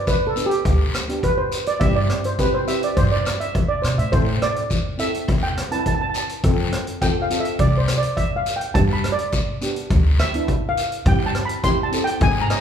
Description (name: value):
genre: calypso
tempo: 104 BPM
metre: 4/4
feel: straight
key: C major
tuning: A4 = 440 Hz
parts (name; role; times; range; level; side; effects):
- steel pan; melody; 0.0-12.6 s; G4 to C6; -23 LUFS; right 2 dB; none
- street-band drum kit; drums; 0.1-12.6 s; hi-hat, kick drum, rim click; -23 LUFS; left 1 dB; none
- guiro; percussion; 0.1-12.6 s; none; -33 LUFS; left 3 dB; none
- steel pan; accompaniment; 0.4-12.6 s; B3 to B4; -27 LUFS; equal; none
- upright bass; bass; 0.7-12.5 s; C2 to B2; -22 LUFS; equal; none
room: wet large studio reverb, RT60 1.3 s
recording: band playing live in one room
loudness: -18 LUFS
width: side -8 dB against mid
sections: 0.0-12.6 A section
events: steel pan solo 0.0-12.6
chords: 0.0 G; 1.8 C/G; 4.1 Am; 6.4 F; 8.8 G; 11.1 C/G